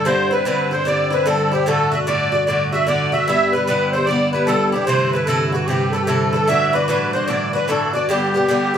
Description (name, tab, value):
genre	celtic folk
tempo	149 BPM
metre	4/4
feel	swing 64% on 8ths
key	unclear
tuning	A4 = 440 Hz
part	musette accordion	melody	0.0-8.8 s	E4 to E5	-19 LUFS	right 1 dB	none
part	Irish bouzouki	accompaniment	0.0-8.8 s	G2 to G4	-20 LUFS	left 2 dB	none
part	warm studio string section	drone	0.0-8.8 s	G2 to D3	-25 LUFS	right 2 dB	none
room	wet studio reverb, RT60 0.6 s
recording	band playing live in one room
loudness	-16 LUFS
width	side -8 dB against mid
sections	0.0-8.8 A section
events	none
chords	0.1 Cadd9; 1.7 D; 3.3 Em; 4.9 Am; 6.5 Dadd9; 8.1 G